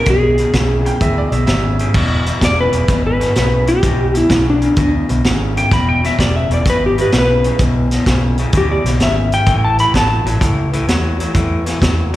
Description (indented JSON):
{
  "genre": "electric blues shuffle",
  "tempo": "128 BPM",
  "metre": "4/4",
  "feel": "swing 68% on 8ths",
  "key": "E mixolydian",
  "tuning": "A4 = 440 Hz",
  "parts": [
    { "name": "clean lap steel guitar", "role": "melody", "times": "0.0-10.3 s", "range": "D4 to B5", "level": "-16 LUFS", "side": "left 1 dB", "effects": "slapback echo" },
    { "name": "electric guitar through a small old amp", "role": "riff", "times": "0.0-12.2 s", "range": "E2 to F#3", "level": "-20 LUFS", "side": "left 2 dB", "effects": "slapback echo" },
    { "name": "vintage muted fingered electric bass", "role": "bass", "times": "0.1-12.2 s", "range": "E1 to E2", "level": "-17 LUFS", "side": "equal", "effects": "none" },
    { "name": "vintage drum kit", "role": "drums", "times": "0.1-12.2 s", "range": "crash cymbal, hi-hat, kick drum, snare drum", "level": "-18 LUFS", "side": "equal", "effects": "none" },
    { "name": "bright upright piano", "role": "second line", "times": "0.9-1.9 s", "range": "D5 to G5", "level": "-24 LUFS", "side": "right 3 dB", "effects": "slapback echo, digital delay" }
  ],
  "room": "little or no reverb",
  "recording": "live gig heard through the venue's PA, recital hall reverb",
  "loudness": "-12 LUFS",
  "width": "side -14 dB against mid",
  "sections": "0.0-2.0 A section; 2.0-12.2 B section",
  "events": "electric slide guitar solo 2.0-12.2",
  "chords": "0.0 E7; 2.0 E; 9.5 A"
}